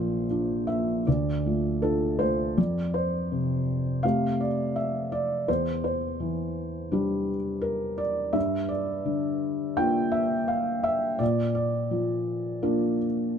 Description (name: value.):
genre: neoclassical minimalist piano.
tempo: 84 BPM.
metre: 4/4.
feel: rubato.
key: unclear.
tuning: A4 = 440 Hz.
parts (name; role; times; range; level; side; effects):
felt-muted upright piano; solo; 0.0-13.4 s; Bb1 to G5; -24 LUFS; equal; none.
room: little or no reverb.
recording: close, detailed microphones.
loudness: -24 LUFS.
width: side -7 dB against mid.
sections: 0.0-2.6 A section; 2.6-13.4 B section.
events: none.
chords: 0.0 Bbadd9; 1.1 Dm; 2.6 Fadd9; 5.5 Cadd9/E; 8.4 Gm7; 11.2 Bb.